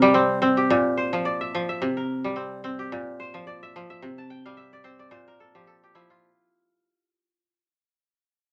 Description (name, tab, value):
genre	west african traditional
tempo	108 BPM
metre	4/4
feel	swing 55% on 16ths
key	unclear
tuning	A4 = 440 Hz
part	kora	solo	0.0-7.6 s	Bb2 to A5	-24 LUFS	equal	none
room	moderate studio ambience, RT60 0.5 s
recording	none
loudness	-25 LUFS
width	mono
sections	0.0-6.2 A section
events	fade-out 0.0-6.2; kora fill 4.2-6.2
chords	0.0 C; 0.7 Bb; 1.8 C; 2.9 Bb; 4.0 C; 5.1 Bb5